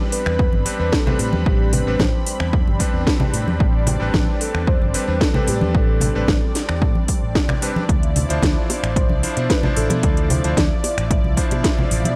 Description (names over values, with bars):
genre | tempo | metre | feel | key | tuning
nu-disco, nu disco | 112 BPM | 4/4 | straight | A minor | A4 = 441 Hz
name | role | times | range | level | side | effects
bright electric grand piano | accompaniment | 0.0-12.2 s | F3 to C5 | -29 LUFS | equal | sidechain pumping
lush unison pad | sustained chords | 0.0-12.2 s | F3 to B5 | -31 LUFS | equal | chorus, sidechain pumping
soft octave-layered synth lead | melody | 0.1-11.4 s | G4 to D5 | -30 LUFS | equal | chorus, tape echo
house drum kit | drums | 0.1-12.2 s | finger snaps, hi-hat, snare drum | -26 LUFS | equal | overdrive
fingered electric bass with an envelope filter | bass | 0.3-12.2 s | G1 to B2 | -25 LUFS | equal | none
electronic kick drum | drums | 0.4-11.8 s | none | -22 LUFS | equal | overdrive
congas and bongos | percussion | 0.5-12.2 s | none | -27 LUFS | equal | none
room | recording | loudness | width
digital ambience | dry, gritty hardware recording | -19 LUFS | mono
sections
0.0-12.2 A section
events
none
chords
0.0 Am11; 7.9 Dm9